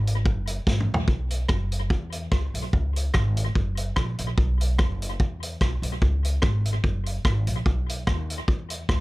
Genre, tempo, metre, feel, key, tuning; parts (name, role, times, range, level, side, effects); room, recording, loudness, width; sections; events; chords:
ska; 146 BPM; 4/4; swing 54% on 8ths; B major; A4 = 440 Hz
upright bass; bass; 0.0-9.0 s; F#1 to E2; -26 LUFS; equal
vintage drum kit; drums; 0.1-9.0 s; hi-hat, kick drum, rim click, snare drum, toms; -25 LUFS; equal; tape echo
little or no reverb; -22 LUFS; side -20 dB against mid
0.0-1.1 A section; 1.1-9.0 A section
drum fill 0.7-1.1